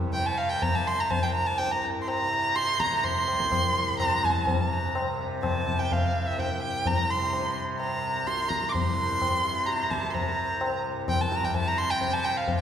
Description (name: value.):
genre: indian classical, Hindustani.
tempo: 126 BPM.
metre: 3/4.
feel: straight.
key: C raga khamaj.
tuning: A4 = 440 Hz.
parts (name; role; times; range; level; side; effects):
tanpura; drone; 0.0-12.6 s; C2 to C3; -34 LUFS; equal; none.
dark violin; melody; 0.1-12.6 s; E5 to D6; -26 LUFS; right 1 dB; none.
tabla; percussion; 0.1-12.6 s; none; -29 LUFS; left 2 dB; none.
room: wet concert hall reverb, RT60 2.3 s.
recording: recorded in a church or concert hall.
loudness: -24 LUFS.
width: side -9 dB against mid.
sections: 0.0-4.5 A section; 4.5-12.6 B section.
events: speeding up 0.0-12.6.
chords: none.